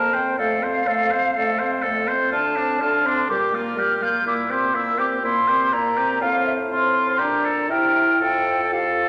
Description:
quick classical-period movement for wind quintet; 123 BPM; 4/4; rubato; F major; A4 = 441 Hz
hollow concert flute; melody; 0.0-9.1 s; E5 to G6; -25 LUFS; equal
clear oboe; second line; 0.0-9.1 s; D4 to C5; -24 LUFS; equal
warm French horn; accompaniment; 0.0-9.1 s; G3 to F4; -30 LUFS; equal
warm clarinet; accompaniment; 0.0-9.1 s; F4 to E5; -36 LUFS; equal
warm bassoon; bass; 0.0-9.1 s; D2 to C3; -32 LUFS; equal
wet recital hall reverb, RT60 1.7 s; -21 LUFS; mono
0.0-9.1 A section
0.4 F; 2.3 Dm7; 3.3 Gm7/Bb; 4.3 C7/Bb; 6.2 F/A; 7.2 Gm/Bb; 7.7 C7; 8.2 F

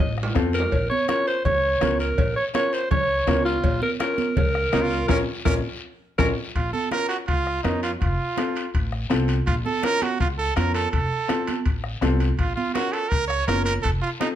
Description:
latin, cumbia; 165 BPM; 4/4; straight; Bb harmonic minor; A4 = 440 Hz
raspy alto saxophone; melody; 0.0-6.3 s; F4 to Eb5; -23 LUFS; right 1 dB
upright bass; bass; 0.0-14.0 s; F1 to F2; -26 LUFS; equal
congas; percussion; 0.0-14.4 s; -30 LUFS; right 7 dB
guiro; percussion; 0.0-14.4 s; -39 LUFS; left 5 dB
bombo; percussion; 0.2-14.4 s; -26 LUFS; left 2 dB
timbales and cowbell; percussion; 0.2-14.4 s; -34 LUFS; right 4 dB
clear upright piano; accompaniment; 0.3-14.4 s; C4 to Bb4; -27 LUFS; left 4 dB
brilliant trumpet; second line; 4.7-14.3 s; Db4 to Db5; -26 LUFS; right 4 dB
moderate large studio reverb, RT60 0.9 s; dark, warm production; -20 LUFS; side -11 dB against mid
0.0-6.6 A section; 6.6-14.4 B section
drum fill 0.0-0.7, 5.5-6.6; band accent 5.1-6.6; trumpet solo 6.6-14.4
0.0 F7; 0.7 Bbm; 8.0 F; 9.5 Bbm; 10.9 F; 12.4 Bbm; 13.8 F

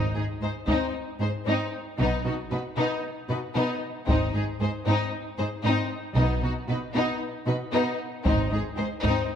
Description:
cinematic, epic orchestral film score; 115 BPM; 4/4; straight; A4 = 441 Hz
clear symphonic violin section; melody; 0.0-9.3 s; Eb4 to C5; -32 LUFS; left 4 dB
warm symphonic violin section; second line; 0.0-9.3 s; B3 to Ab4; -32 LUFS; left 3 dB
rich symphonic viola section; accompaniment; 0.0-9.3 s; Eb4; -33 LUFS; equal
warm studio double bass section; bass; 0.0-8.5 s; Ab1 to B1; -29 LUFS; right 2 dB
warm symphonic cello section; bass; 0.2-9.1 s; Ab2 to B2; -29 LUFS; right 2 dB
solo taiko drums; drums; 0.7-0.9, 4.1-5.1, 8.3-9.3 s; -30 LUFS; equal
moderate scoring stage reverb, RT60 1.9 s; dark, warm production; -24 LUFS; side -8 dB against mid
0.0-9.4 A section
build-up 0.0-9.4
0.0 Ab; 2.0 B; 4.1 Ab; 6.2 B; 8.3 Ab

